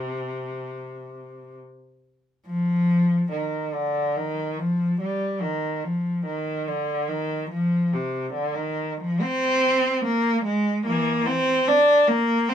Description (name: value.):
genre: classical, baroque-style suite movement for unaccompanied cello.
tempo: 72 BPM.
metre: 4/4.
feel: uneven beats, rubato.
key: C minor.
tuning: A4 = 439 Hz.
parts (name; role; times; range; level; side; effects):
warm cello; solo; 0.0-12.5 s; C3 to D4; -21 LUFS; equal; none.
room: light reverb.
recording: minimal, uncompressed stereo recording.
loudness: -21 LUFS.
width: side -9 dB against mid.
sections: 0.0-2.5 A section; 2.5-12.5 B section.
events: none.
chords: none.